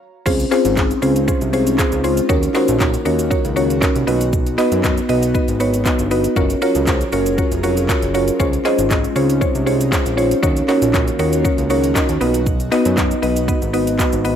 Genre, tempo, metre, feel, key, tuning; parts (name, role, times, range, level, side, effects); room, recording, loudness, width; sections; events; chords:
dance-pop; 118 BPM; 4/4; straight; Db major; A4 = 440 Hz
mallet-like synth pluck; accompaniment; 0.3-14.4 s; Cb4 to Eb5; -17 LUFS; equal; chorus, sidechain pumping
airy breathy pad; sustained chords; 0.3-14.4 s; Eb3 to Bb4; -24 LUFS; equal; chorus, sidechain pumping
fat analog bass; bass; 0.3-14.4 s; F1 to Gb2; -21 LUFS; equal; sidechain pumping
pop drum kit; drums; 0.3-14.4 s; crash cymbal, handclaps, hi-hat, kick drum, shaker; -21 LUFS; equal
moderate plate reverb, RT60 1.3 s; rough home demo mix; -14 LUFS; side -9 dB against mid
0.3-14.4 A section
stop 0.0
0.3 Dbmaj7; 2.3 Ebm7; 4.1 Cb; 6.4 Gbmaj7; 8.4 Dbmaj7; 10.4 Ebm7; 12.2 Cb